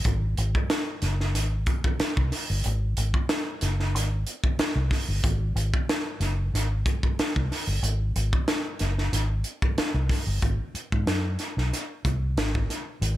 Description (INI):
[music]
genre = funk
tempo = 93 BPM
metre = 4/4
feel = straight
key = Ab mixolydian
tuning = A4 = 440 Hz
[part]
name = vintage muted fingered electric bass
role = bass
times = 0.0-13.2 s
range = Gb1 to Ab2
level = -25 LUFS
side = equal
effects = none
[part]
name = crisp fusion drum kit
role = drums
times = 0.0-13.2 s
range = hi-hat, kick drum, snare drum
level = -26 LUFS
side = equal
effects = none
[sound]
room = little or no reverb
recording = none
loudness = -24 LUFS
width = side -15 dB against mid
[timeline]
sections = 0.0-10.4 A section; 10.4-13.2 B section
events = none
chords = none